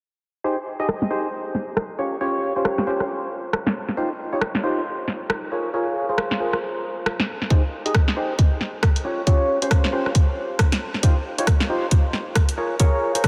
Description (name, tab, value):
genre	UK garage, two-step garage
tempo	136 BPM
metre	4/4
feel	swing 60% on 16ths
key	unclear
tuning	A4 = 441 Hz
part	percussive organ stab	stabs	0.4-13.3 s	Db4 to Eb5	-27 LUFS	equal	lush chorus, analog delay
part	garage drum kit	drums	0.9-13.3 s	hi-hat, rim click, snare drum	-28 LUFS	equal	low-pass filter on snare, low-pass filter on hats
part	electronic kick drum	drums	7.5-13.3 s	none	-20 LUFS	equal	none
room	wet huge ambient reverb, RT60 4.4 s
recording	dreamy mix soaked in reverb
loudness	-22 LUFS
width	mono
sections	0.4-13.3 A section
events	filter sweep on drum 0.4-13.3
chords	0.4 Ebadd11; 2.0 Dbmaj7#11; 3.8 Dbmaj9#11 (rootless); 5.5 Fmadd11; 7.5 Ebadd11; 9.0 Dbmaj7#11; 10.8 Dbmaj9#11 (rootless); 12.6 Fmadd11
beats	| 0.45 0.89 1.33 1.77 | 2.21 2.65 3.09 3.53 | 3.97 4.42 4.86 5.30 | 5.74 6.18 6.62 7.06 | 7.50 7.95 8.39 8.83 | 9.27 9.71 10.15 10.59 | 11.03 11.47 11.91 12.36 | 12.80 13.24